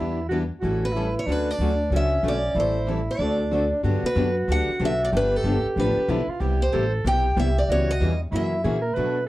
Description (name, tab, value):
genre	acoustic string swing (jazz manouche)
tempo	187 BPM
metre	4/4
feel	swing 61% on 8ths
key	D major, G major from 3.8 s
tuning	A4 = 440 Hz
part	breathy soprano saxophone	second line	0.0-9.3 s	C#4 to B4	-29 LUFS	right 2 dB	none
part	picked steel-string acoustic guitar	accompaniment	0.0-9.2 s	B2 to A4	-28 LUFS	left 3 dB	none
part	picked steel-string acoustic guitar	accompaniment	0.0-9.2 s	B2 to B4	-36 LUFS	right 3 dB	none
part	upright bass	bass	0.0-9.3 s	G1 to B2	-25 LUFS	equal	none
part	picked steel-string acoustic guitar	melody	0.8-8.8 s	A4 to G5	-26 LUFS	equal	none
room	light reverb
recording	worn, warbling old tape, cassette tape, warbly pitch drift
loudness	-21 LUFS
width	side -16 dB against mid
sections	0.0-3.8 A section; 3.8-9.3 B section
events	none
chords	0.0 Em7; 0.6 A7; 1.3 Dmaj7; 2.6 Am7; 3.2 D7; 3.8 Gmaj7; 5.1 G7; 6.4 Cmaj7; 7.7 C#m7b5; 8.3 F#7